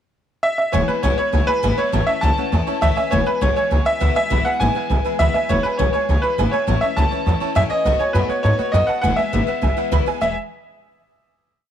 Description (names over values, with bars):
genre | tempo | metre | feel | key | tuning
rock | 203 BPM | 4/4 | straight | E major | A4 = 439 Hz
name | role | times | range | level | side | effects
clear upright piano | melody | 0.4-10.4 s | B4 to A5 | -20 LUFS | right 1 dB | none
picked steel-string acoustic guitar | accompaniment | 0.7-10.3 s | E2 to F#4 | -25 LUFS | left 14 dB | none
tack piano | accompaniment | 0.7-10.3 s | B4 to B5 | -26 LUFS | right 14 dB | none
upright bass | bass | 0.7-10.4 s | E1 to G#2 | -19 LUFS | equal | none
room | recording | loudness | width
small room reverb | 1960s-style stereo with parts hard left and right | -16 LUFS | side -9 dB against mid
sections
0.0-0.7 pickup bar; 0.7-10.2 A section; 10.2-11.4 final chord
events
none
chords
0.0 N.C.; 0.7 E; 1.9 A; 3.1 E; 6.7 A; 7.9 B7; 9.0 E